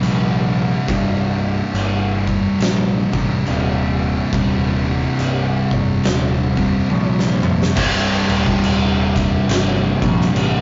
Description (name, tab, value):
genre	stoner and doom metal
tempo	70 BPM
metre	4/4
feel	swing 61% on 8ths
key	C minor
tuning	A4 = 440 Hz
part	thick fuzz guitar	riff	0.0-10.6 s	C2 to C3	-24 LUFS	equal	distortion
part	thick fuzz guitar	riff	0.0-7.8 s	C2 to C3	-23 LUFS	equal	distortion
part	growling fingered electric bass	bass	0.0-10.6 s	C1 to Bb1	-24 LUFS	equal	overdrive
part	oversized low-tuned drum kit	drums	0.0-10.6 s	crash cymbal, kick drum, snare drum, toms	-24 LUFS	equal	none
part	biting overdriven guitar	riff	7.8-10.6 s	C2 to C3	-23 LUFS	equal	none
room	light reverb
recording	rough rehearsal-room recording, warm saturation, nothing above 7.5 kHz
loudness	-18 LUFS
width	mono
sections	0.0-7.8 A section; 7.8-10.6 B section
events	drum fill 6.9-7.8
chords	0.0 Cm